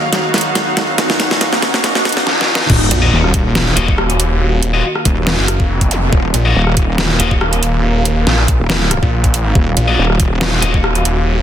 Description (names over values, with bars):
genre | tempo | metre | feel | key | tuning
heavy wobble dubstep | 140 BPM | 4/4 | swing 54% on 16ths, half-time | Eb minor | A4 = 440 Hz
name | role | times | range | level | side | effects
soft supersaw | melody | 0.0-2.3 s | Eb4 to Gb4 | -20 LUFS | right 1 dB | dub echo
warm studio string section | sustained chords | 0.0-11.4 s | Eb2 to F5 | -23 LUFS | right 2 dB | vintage 12-bit sampler grit, sidechain pumping, low-pass filter
riser, sub drop and zap | sound effects | 0.0-6.0 s | none | -22 LUFS | equal | none
dubstep drum kit | drums | 0.1-11.1 s | crash cymbal, hi-hat, rim click, snare drum | -16 LUFS | equal | none
wobble bass | bass | 2.7-10.6 s | Eb1 | -15 LUFS | equal | chorus, overdrive
electronic kick drum | drums | 2.7-10.8 s | none | -14 LUFS | equal | none
snarling distorted saw bass | bass | 2.9-11.4 s | Eb1 to Bb1 | -14 LUFS | equal | distortion, overdrive
high-gain distorted guitar | stabs | 3.0-7.3, 9.9-10.7 s | Bb3 to Eb5 | -21 LUFS | left 4 dB | distortion, dub echo
room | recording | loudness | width
light reverb | dense, heavily limited modern master, high-pass filter | -11 LUFS | side -10 dB against mid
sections
0.0-2.7 A section; 2.7-11.4 B section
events
build-up 0.0-2.7; drum fill 0.0-2.3, 2.3-2.7; riser 0.0-2.7; drop 2.7-11.4; impact 2.7-4.4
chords
0.0 Ebmadd9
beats
0.13 0.55 | 0.98 1.41 1.84 2.27 | 2.70 3.13 3.55 3.98 | 4.41 4.84 5.27 5.70 | 6.13 6.55 6.98 7.41 | 7.84 8.27 8.70 9.13 | 9.55 9.98 10.41 10.84 | 11.27